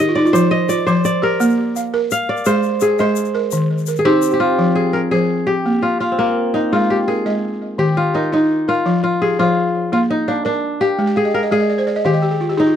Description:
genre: west african traditional, West African string and xylophone music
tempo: 113 BPM (dotted quarters)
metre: 12/8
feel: straight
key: F dorian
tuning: A4 = 442 Hz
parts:
  - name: kora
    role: melody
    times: 0.0-12.8 s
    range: Bb3 to F5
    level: -17 LUFS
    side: left 1 dB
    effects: none
  - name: balafon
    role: arpeggios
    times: 0.0-12.8 s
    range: Eb3 to G5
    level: -18 LUFS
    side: equal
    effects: tape echo
  - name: egg shaker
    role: percussion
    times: 0.3-4.4 s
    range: none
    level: -30 LUFS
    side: left 26 dB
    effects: none
room: light reverb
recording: dry, close 1970s-style studio recording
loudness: -14 LUFS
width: side -9 dB against mid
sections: 0.0-4.6 A section; 4.6-12.8 B section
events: balafon fill 0.0-0.3, 11.1-12.8; kora solo 0.0-4.6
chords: 0.3 F5; 1.4 Bb5; 2.5 Ab; 3.5 Eb; 4.6 Fm; 5.7 Bb5; 6.7 Ab5; 7.8 Eb5; 8.9 F5; 9.9 Bb; 11.0 Abmaj7#11; 12.0 N.C.

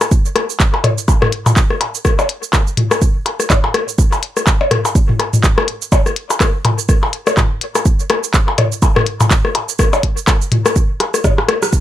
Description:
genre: techno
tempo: 124 BPM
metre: 4/4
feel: swing 58% on 16ths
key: none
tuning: none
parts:
  - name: minimal click drum kit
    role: drums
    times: 0.0-11.8 s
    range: cabasa, handclaps, hi-hat, rim click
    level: -19 LUFS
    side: right 1 dB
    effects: none
  - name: minimal click drum kit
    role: percussion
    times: 0.0-11.6 s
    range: percussion blips, rim click, toms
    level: -16 LUFS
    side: left 2 dB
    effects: overdrive, dub echo
  - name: electronic kick drum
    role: drums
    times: 0.1-11.8 s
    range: none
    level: -14 LUFS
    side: right 1 dB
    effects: none
room: light reverb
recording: none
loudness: -12 LUFS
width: side -12 dB against mid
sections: 0.0-11.7 A section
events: drum fill 11.0-11.7; band accent 11.6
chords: none

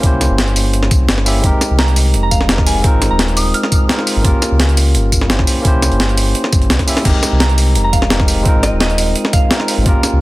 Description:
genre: liquid drum and bass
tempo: 171 BPM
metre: 4/4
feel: straight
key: F minor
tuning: A4 = 440 Hz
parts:
  - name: tine electric piano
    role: accompaniment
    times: 0.0-10.2 s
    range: Ab3 to E5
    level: -18 LUFS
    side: equal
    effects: digital delay
  - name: breakbeat sampler-style drum kit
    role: drums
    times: 0.0-10.1 s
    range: crash cymbal, hi-hat, snare drum, tambourine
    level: -17 LUFS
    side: equal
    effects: none
  - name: electronic kick drum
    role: drums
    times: 0.0-9.9 s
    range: none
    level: -14 LUFS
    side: equal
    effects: none
  - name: sub bass with octave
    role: bass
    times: 0.1-10.2 s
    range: Eb1 to Db2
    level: -15 LUFS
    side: equal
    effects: none
  - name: soft synth bell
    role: melody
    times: 1.8-3.7, 7.4-9.7 s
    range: Eb5 to F6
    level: -22 LUFS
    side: right 1 dB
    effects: chorus, dub echo
room: little or no reverb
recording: dense, heavily limited modern master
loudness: -11 LUFS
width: side -19 dB against mid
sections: 0.0-10.2 A section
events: none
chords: 0.0 C7b9; 1.4 Fm11; 2.8 Ab69; 4.2 Gm7b5; 5.5 C7b9; 7.1 Fm11; 8.5 Ab69

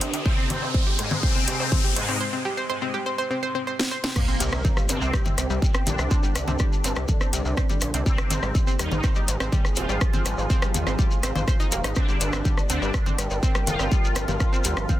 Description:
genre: melodic techno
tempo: 123 BPM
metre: 4/4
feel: straight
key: C minor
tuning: A4 = 440 Hz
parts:
  - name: resonant sweep polysynth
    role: melody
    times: 0.0-15.0 s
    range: Ab2 to F4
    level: -31 LUFS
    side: equal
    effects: ensemble chorus, sidechain pumping, digital delay
  - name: deep dark ambient pad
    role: sustained chords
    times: 0.0-2.2 s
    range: G4 to C5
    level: -47 LUFS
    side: right 2 dB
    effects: none
  - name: analog pluck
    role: arpeggios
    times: 0.0-15.0 s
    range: G3 to C5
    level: -31 LUFS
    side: equal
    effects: chorus, sidechain pumping, dub echo
  - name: gritty driven synth bass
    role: bass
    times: 0.0-14.9 s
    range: Eb1 to Eb2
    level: -27 LUFS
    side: equal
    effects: distortion, sidechain pumping, high-pass filter
  - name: techno drum kit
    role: drums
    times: 0.0-15.0 s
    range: congas, crash cymbal, hi-hat, rim click, snare drum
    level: -28 LUFS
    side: left 1 dB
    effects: soft clipping on snare
  - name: riser and impact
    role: sound effects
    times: 0.0-6.1 s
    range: none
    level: -30 LUFS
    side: left 1 dB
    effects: none
  - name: warbly tape-like pad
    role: texture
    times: 0.0-15.0 s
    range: C4 to Eb6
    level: -38 LUFS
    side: equal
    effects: chorus, built-in reverb, sidechain pumping
  - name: electronic kick drum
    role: drums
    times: 0.3-15.0 s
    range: none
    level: -23 LUFS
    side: equal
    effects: distortion
  - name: shekere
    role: percussion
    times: 4.2-15.0 s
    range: none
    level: -35 LUFS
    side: left 3 dB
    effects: none
room: little or no reverb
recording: dense, heavily limited modern master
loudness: -21 LUFS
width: side -14 dB against mid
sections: 0.0-4.2 A section; 4.2-15.0 B section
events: build-up 0.0-4.2; riser 0.0-2.2; filter sweep on synth arpeggio sound 0.0-4.2; break 2.2-4.2; drum fill 3.8-4.2; drop 4.2-15.0; impact 4.2-6.1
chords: 0.3 Ab; 4.2 C5; 8.1 Ab; 12.0 Gm

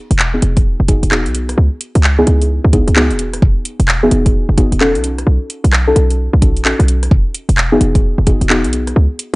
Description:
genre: UK garage, two-step garage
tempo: 130 BPM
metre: 4/4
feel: swing 63% on 16ths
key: E major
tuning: A4 = 441 Hz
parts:
  - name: short 808-style bass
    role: bass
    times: 0.1-9.1 s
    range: E1 to C#2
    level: -13 LUFS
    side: equal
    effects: none
  - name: house drum kit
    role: drums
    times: 0.1-9.3 s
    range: handclaps, hi-hat, rim click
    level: -18 LUFS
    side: equal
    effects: none
  - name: deep mellow chord stab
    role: stabs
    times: 0.3-9.0 s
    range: B3 to A4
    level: -16 LUFS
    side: left 1 dB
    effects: chorus, tape echo
  - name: electronic kick drum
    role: drums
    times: 0.6-8.4 s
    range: none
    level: -12 LUFS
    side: equal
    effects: none
room: light reverb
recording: dry, gritty hardware recording, nothing above 10.7 kHz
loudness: -11 LUFS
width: side -23 dB against mid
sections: 0.0-9.4 A section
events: none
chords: 0.0 Emaj7; 1.6 C#m9; 3.2 Emaj7; 5.0 B9; 7.1 Emaj7

